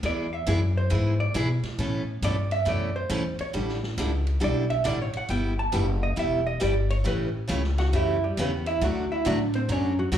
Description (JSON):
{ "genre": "country, western swing", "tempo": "136 BPM", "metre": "4/4", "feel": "swing 66% on 8ths", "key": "unclear", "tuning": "A4 = 439 Hz", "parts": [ { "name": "picked steel-string acoustic guitar", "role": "accompaniment", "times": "0.0-10.2 s", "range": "B2 to A4", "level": "-29 LUFS", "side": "right 1 dB", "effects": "slapback echo" }, { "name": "upright bass", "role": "bass", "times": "0.0-10.2 s", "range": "E1 to B2", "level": "-27 LUFS", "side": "left 1 dB", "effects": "none" }, { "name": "swinging big-band drum kit", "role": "drums", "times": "0.0-10.2 s", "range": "hi-hat, ride cymbal, snare drum", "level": "-41 LUFS", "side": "right 1 dB", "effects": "none" }, { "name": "vintage hollow-body jazz guitar", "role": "second line", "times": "0.1-10.1 s", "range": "F#3 to A5", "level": "-29 LUFS", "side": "right 2 dB", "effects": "slapback echo" } ], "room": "light reverb", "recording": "live gig heard through the venue's PA, club reverb", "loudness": "-23 LUFS", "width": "side -10 dB against mid", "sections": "0.0-10.2 A section", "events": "hollow-body jazz guitar solo 0.0-10.2", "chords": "0.0 E; 1.8 Aadd9; 3.5 A7sus4; 5.3 G6; 7.1 A7; 8.8 D", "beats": "| 0.03 0.47 0.91 1.34 | 1.78 2.22 2.66 3.10 | 3.54 3.98 4.42 4.86 | 5.30 5.74 6.18 6.62 | 7.06 7.50 7.94 8.38 | 8.82 9.26 9.70 10.13" }